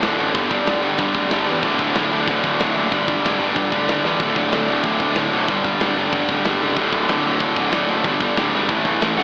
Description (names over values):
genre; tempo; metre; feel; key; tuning
punk rock; 187 BPM; 4/4; straight; unclear; A4 = 440 Hz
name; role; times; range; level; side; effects
distorted electric guitar; riff; 0.0-9.2 s; D2 to A3; -22 LUFS; equal; overdrive, slapback echo
distorted electric guitar; riff; 0.0-9.2 s; D2 to A3; -27 LUFS; equal; distortion, slapback echo
fuzz picked electric bass; bass; 0.0-9.2 s; D1 to G2; -28 LUFS; equal; overdrive
tight metal drum kit; drums; 0.0-9.2 s; hi-hat, kick drum, snare drum; -28 LUFS; equal; none
nasal lead guitar with a parked wah; melody; 9.2 s; F#5; -24 LUFS; equal; overdrive
room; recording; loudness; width
little or no reverb; live gig heard through the venue's PA, recital hall reverb, AM radio sound; -19 LUFS; mono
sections
0.0-9.2 A section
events
drum fill 4.0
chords
0.3 G5; 1.6 D5; 2.9 G5; 4.2 D5; 5.5 G5; 6.8 D5; 8.1 G5; 8.7 A5